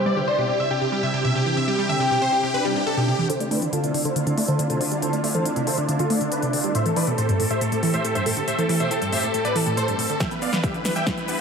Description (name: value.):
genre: uplifting trance.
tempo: 139 BPM.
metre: 4/4.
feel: straight.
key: D dorian.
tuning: A4 = 443 Hz.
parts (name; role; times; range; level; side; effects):
big supersaw lead; melody; 0.0-11.4 s; D4 to G5; -24 LUFS; equal; phaser, sidechain pumping, low-pass filter, dub echo.
warm velvety synth lead; second line; 0.0-3.2 s; C5 to G5; -25 LUFS; left 2 dB; chorus, dub echo.
analog string pad; sustained chords; 0.0-11.4 s; C3 to G4; -29 LUFS; left 1 dB; ensemble chorus, sidechain pumping.
wide unison pluck; arpeggios; 0.1-11.4 s; G2 to B3; -25 LUFS; right 1 dB; sidechain pumping.
swell and riser; sound effects; 2.6-3.3, 10.8-11.4 s; none; -32 LUFS; left 3 dB; none.
big-room dance drum kit; drums; 3.3-11.4 s; hi-hat, shaker, snare drum; -29 LUFS; left 1 dB; overdrive, studio reverb.
solid FM bass; bass; 3.5-11.4 s; none; barely audible; none; none.
electronic kick drum; drums; 10.2-11.2 s; none; -28 LUFS; equal; overdrive, studio reverb.
room: wet lush hall reverb, RT60 2.1 s.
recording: dark, warm production, high-pass filter, low-pass filter.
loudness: -20 LUFS.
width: side -6 dB against mid.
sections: 0.0-3.3 A section; 3.3-11.4 B section.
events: filter sweep on synth pluck 0.0-3.3, 3.3-11.4; swell 2.6-3.3; build-up 3.3-11.4; filter sweep on supersaw synth 3.3-11.4; drum fill 10.2-11.4.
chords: 0.0 Cadd9; 3.3 Dm7; 6.8 Am7; 10.2 Em7.